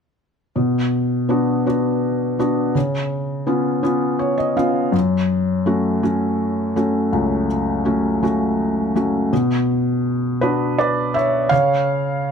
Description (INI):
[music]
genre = folk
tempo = 55 BPM (dotted quarters)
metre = 6/8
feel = straight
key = B minor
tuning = A4 = 440 Hz
[part]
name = felt-muted upright piano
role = melody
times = 0.6-12.3 s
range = C#2 to E#5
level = -17 LUFS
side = equal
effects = none
[sound]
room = little or no reverb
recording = close, detailed microphones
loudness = -17 LUFS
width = side -6 dB against mid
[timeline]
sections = 0.6-9.3 A section; 9.3-12.3 B section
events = felt piano fill 3.8-4.9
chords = 0.6 Bm; 2.8 C#7; 4.9 F#m; 9.3 Bm; 11.5 C#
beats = | 0.57 1.66 | 2.75 3.85 | 4.94 6.03 | 7.13 8.22 | 9.32 10.41 | 11.51